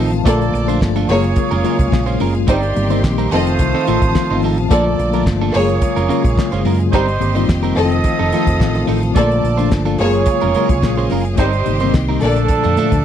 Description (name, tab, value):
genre	disco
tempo	108 BPM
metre	4/4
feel	straight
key	Bb major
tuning	A4 = 440 Hz
part	clean electric guitar	accompaniment	0.0-13.0 s	F3 to C5	-23 LUFS	right 8 dB	none
part	mellow tine electric piano	accompaniment	0.0-13.0 s	Bb2 to Db5	-19 LUFS	left 4 dB	medium stereo tremolo
part	clear symphonic string section	sustained chords	0.0-13.0 s	A3 to Eb6	-27 LUFS	left 4 dB	none
part	hollow-body short-scale fingered electric bass	bass	0.0-13.0 s	F1 to Gb2	-19 LUFS	equal	none
part	damped 70s drum kit	drums	0.1-13.0 s	handclaps, hi-hat, kick drum, snare drum	-17 LUFS	equal	none
part	warm studio violin section	second line	0.2-12.5 s	G3 to Eb5	-19 LUFS	left 2 dB	none
part	clear horn section	stabs	0.2-13.0 s	F3 to Eb5	-21 LUFS	right 7 dB	none
room	small room reverb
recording	dry, close 1970s-style studio recording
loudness	-13 LUFS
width	side -10 dB against mid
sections	0.0-13.0 A section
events	none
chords	0.2 Bbmaj7; 1.1 Gbmaj9; 2.5 Eb6/G; 3.3 F7; 4.7 Bbmaj7; 5.5 Gbmaj9; 6.9 Eb6/G; 7.8 F7; 9.2 Bbmaj7; 10.0 Gbmaj9; 11.4 Eb6/G; 12.2 Bbmaj7